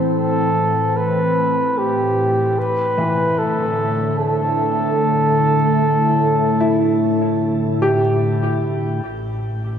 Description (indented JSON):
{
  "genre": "ambient",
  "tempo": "74 BPM",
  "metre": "4/4",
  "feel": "straight",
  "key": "unclear",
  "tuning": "A4 = 440 Hz",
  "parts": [
    { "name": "evolving wavetable pad", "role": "sustained chords", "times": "0.0-9.8 s", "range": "A2 to E4", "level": "-19 LUFS", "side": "equal", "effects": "phaser, built-in reverb, shimmer reverb" },
    { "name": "felt-muted upright piano", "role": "arpeggios", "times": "0.0-9.8 s", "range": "E3 to B4", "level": "-23 LUFS", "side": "equal", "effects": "shimmer reverb, tape echo" },
    { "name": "mellow flugelhorn", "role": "melody", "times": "0.2-8.2 s", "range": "G4 to B4", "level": "-19 LUFS", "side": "right 1 dB", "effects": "shimmer reverb, tape echo" },
    { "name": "clear studio double bass section", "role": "bass", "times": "9.0-9.8 s", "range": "A1", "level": "-25 LUFS", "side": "equal", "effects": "none" }
  ],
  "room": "wet spring reverb, RT60 2.4 s",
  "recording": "echo-heavy mix",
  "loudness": "-16 LUFS",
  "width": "side -8 dB against mid",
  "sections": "0.0-9.1 A section",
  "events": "filter sweep on ambient pad 0.0-9.1",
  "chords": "0.0 Am9; 2.6 Dsus2/A; 9.1 Am7"
}